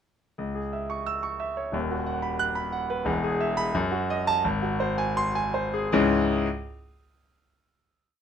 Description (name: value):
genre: classical, virtuoso piano study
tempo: 78-91 BPM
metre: 2/4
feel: rubato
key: C# minor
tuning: A4 = 440 Hz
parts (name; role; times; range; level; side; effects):
- clear concert grand piano; solo; 0.4-6.5 s; D#1 to F#6; -24 LUFS; equal; none
room: little or no reverb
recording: close, detailed microphones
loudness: -24 LUFS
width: side -8 dB against mid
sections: 0.4-5.9 A section; 5.9-7.4 final chord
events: slowing down 2.4-5.9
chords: 0.4 C#m; 1.7 B/D#; 3.1 E; 3.7 D#dim/F#; 4.4 G#7; 5.9 C#m